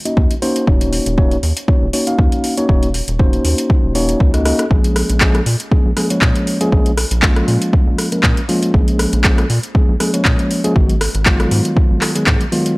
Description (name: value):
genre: deep house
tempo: 119 BPM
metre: 4/4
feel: swing 54% on 16ths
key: Bb phrygian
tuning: A4 = 445 Hz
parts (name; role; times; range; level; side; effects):
- mellow tine electric piano; stabs; 0.1-12.7 s; Eb3 to F5; -18 LUFS; equal; sidechain pumping, analog delay
- deep house drum kit; drums; 0.1-12.8 s; handclaps, hi-hat, rim click; -19 LUFS; equal; overdrive
- rubbery square bass; bass; 0.2-12.4 s; Eb1 to Bb2; -18 LUFS; equal; sidechain pumping
- electronic kick drum; drums; 0.2-12.4 s; none; -14 LUFS; equal; overdrive
room: little or no reverb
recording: dry, gritty hardware recording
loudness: -12 LUFS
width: side -24 dB against mid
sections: 0.0-12.8 A section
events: drum fill 4.3-4.7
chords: 0.0 Ebm7; 4.7 Bbm7; 10.8 Abm7